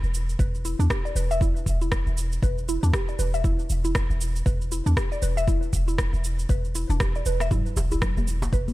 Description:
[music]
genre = afro house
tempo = 118 BPM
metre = 4/4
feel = swing 58% on 16ths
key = E minor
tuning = A4 = 439 Hz
[part]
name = warm 808-style bass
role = bass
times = 0.0-8.7 s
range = E1 to E2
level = -25 LUFS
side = equal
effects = sidechain pumping
[part]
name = afro-pop drum kit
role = drums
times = 0.0-8.7 s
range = rim click, shaker, toms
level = -32 LUFS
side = right 1 dB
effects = studio reverb
[part]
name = mallet-like synth pluck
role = arpeggios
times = 0.4-8.7 s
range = D4 to E5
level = -31 LUFS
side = equal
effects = chorus, phaser, sidechain pumping, tape echo
[part]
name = electronic kick drum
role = drums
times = 0.4-8.6 s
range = none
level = -25 LUFS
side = equal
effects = studio reverb
[part]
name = congas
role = percussion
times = 7.5-8.7 s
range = none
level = -33 LUFS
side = left 3 dB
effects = none
[part]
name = djembe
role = percussion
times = 7.5-8.5 s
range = none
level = -34 LUFS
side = right 1 dB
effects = none
[sound]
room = digital ambience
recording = none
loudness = -22 LUFS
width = side -17 dB against mid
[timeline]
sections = 0.0-8.7 A section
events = none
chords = 0.0 E5

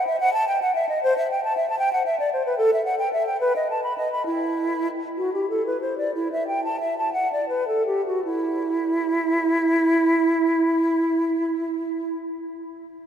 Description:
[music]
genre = classical, baroque-style fantasia for unaccompanied flute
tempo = 52-80 BPM (dotted quarters)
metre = 12/8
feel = rubato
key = E minor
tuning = A4 = 440 Hz
[part]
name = mellow hollow silver concert flute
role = solo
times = 0.0-12.2 s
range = E4 to B5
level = -21 LUFS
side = equal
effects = none
[sound]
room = wet cathedral reverb, RT60 5.8 s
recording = in a vast, echoing space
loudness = -20 LUFS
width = side -8 dB against mid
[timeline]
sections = 0.0-8.2 A section; 8.2-12.4 B section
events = slowing down 2.1-8.2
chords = none

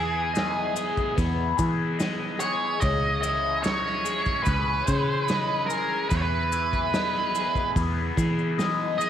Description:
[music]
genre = psychedelic rock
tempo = 73 BPM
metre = 4/4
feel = straight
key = E major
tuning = A4 = 441 Hz
[part]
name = octave-fuzz lead guitar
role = melody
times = 0.0-9.1 s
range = G#4 to D#5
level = -26 LUFS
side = right 2 dB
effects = distortion, slapback echo
[part]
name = combo organ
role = sustained chords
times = 0.0-9.1 s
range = E3 to G#4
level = -34 LUFS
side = right 10 dB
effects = none
[part]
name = raw garage guitar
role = riff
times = 0.0-9.1 s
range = C#3 to D#5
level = -29 LUFS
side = left 10 dB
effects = overdrive, phaser
[part]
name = fingered electric bass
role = bass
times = 0.0-9.1 s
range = C#2 to E3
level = -29 LUFS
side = equal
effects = none
[part]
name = raw garage drum kit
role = drums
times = 0.4-9.1 s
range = hi-hat, kick drum, snare drum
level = -31 LUFS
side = equal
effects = none
[part]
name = maracas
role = percussion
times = 0.4-9.1 s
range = none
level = -39 LUFS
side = left 14 dB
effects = none
[sound]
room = small room ambience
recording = 1960s-style stereo with parts hard left and right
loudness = -23 LUFS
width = side -10 dB against mid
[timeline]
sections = 0.0-9.1 A section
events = none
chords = 0.0 Emaj7; 2.8 C#madd9; 6.1 Emaj7

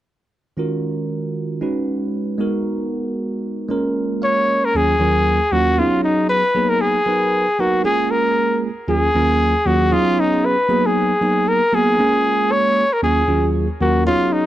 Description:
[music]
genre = jazz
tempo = 116 BPM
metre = 4/4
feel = swing 56% on 16ths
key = Eb minor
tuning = A4 = 440 Hz
[part]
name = bell-like tine electric piano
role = accompaniment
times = 0.6-14.5 s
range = Eb2 to F5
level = -19 LUFS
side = right 1 dB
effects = phaser
[part]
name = bright trumpet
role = melody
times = 4.2-14.5 s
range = D#4 to Db5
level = -17 LUFS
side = left 1 dB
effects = none
[sound]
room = little or no reverb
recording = dry, close 1970s-style studio recording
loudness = -16 LUFS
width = side -13 dB against mid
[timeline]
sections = 0.6-4.7 A section; 4.7-14.5 B section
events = tine electric piano fill 4.0-4.7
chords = 0.6 Ebm11; 1.6 B6; 2.4 Abm7; 3.7 Bbm7; 4.7 Ebm11; 5.8 B6; 6.6 Abm7; 7.8 Bbm7; 8.9 Ebm11; 9.9 B6; 10.7 Abm7; 12.0 Bbm7; 13.0 Ebm11

